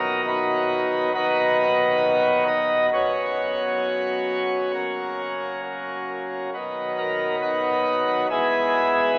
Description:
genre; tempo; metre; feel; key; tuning
classical, chorale-style piece for pipe organ; 68 BPM; 4/4; rubato; B major; A4 = 440 Hz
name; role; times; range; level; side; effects
pipe organ, plenum; solo; 0.0-9.2 s; D#1 to D#5; -20 LUFS; equal; none
room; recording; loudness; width
wet cathedral reverb, RT60 6.1 s; telephone sound; -20 LUFS; side -33 dB against mid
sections
0.0-9.2 A section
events
none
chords
0.0 B; 1.1 B/D#; 2.9 F#sus4; 4.8 F#; 6.5 B; 8.3 E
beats
0.28 1.15 2.03 | 2.93 3.84 4.75 5.65 | 6.54 7.42 8.29 9.16

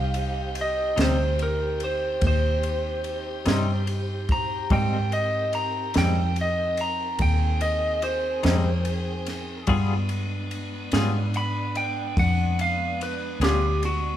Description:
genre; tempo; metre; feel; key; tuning
slow blues; 48 BPM (dotted quarters); 12/8; straight; C minor; A4 = 441 Hz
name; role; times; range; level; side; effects
lightly driven lead guitar; melody; 0.0-14.2 s; F#4 to B5; -27 LUFS; right 1 dB; none
tonewheel organ; sustained chords; 0.0-14.2 s; Ab3 to G5; -37 LUFS; equal; slow rotary speaker, overdrive, chorus vibrato
warm saxophone section; sustained chords; 0.0-14.2 s; B3 to Ab4; -37 LUFS; right 1 dB; none
vintage muted fingered electric bass; bass; 0.0-14.2 s; C2 to Ab2; -26 LUFS; equal; none
compact cocktail drum kit; drums; 0.1-14.0 s; kick drum, ride cymbal, snare drum; -30 LUFS; equal; none
clean electric guitar; accompaniment; 1.0-13.7 s; Ab2 to Ab4; -29 LUFS; left 4 dB; tremolo
room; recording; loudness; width
moderate large studio reverb, RT60 1.1 s; band playing live in one room; -22 LUFS; side -11 dB against mid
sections
0.0-14.2 A section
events
lead electric guitar solo 0.0-14.2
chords
0.0 Cm; 4.7 Abmaj7; 9.7 G7b9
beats
0.97 2.22 3.47 | 4.71 5.96 7.20 8.44 | 9.68 10.93 12.17 13.41

